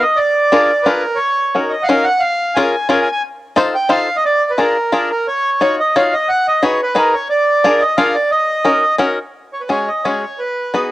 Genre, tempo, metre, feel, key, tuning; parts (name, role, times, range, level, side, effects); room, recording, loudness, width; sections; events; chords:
musette waltz; 177 BPM; 3/4; swing 54% on 8ths; Eb minor; A4 = 440 Hz
accordion; melody; 0.0-10.9 s; G#4 to Ab5; -14 LUFS; right 1 dB; cassette tape
bluegrass banjo; accompaniment; 0.0-10.9 s; G#3 to Db5; -15 LUFS; left 2 dB; cassette tape
light reverb; home recording on cassette; -13 LUFS; side -16 dB against mid
0.0-9.3 A section; 9.3-10.9 B section
0.2 Bb7; 1.2 Ebm7; 2.2 Bbm7; 3.2 F7; 4.2 Bb7; 5.3 Ebm9; 6.3 Abm7; 7.3 Bb7; 8.3 Ebm7; 9.3 F#sus2; 10.4 B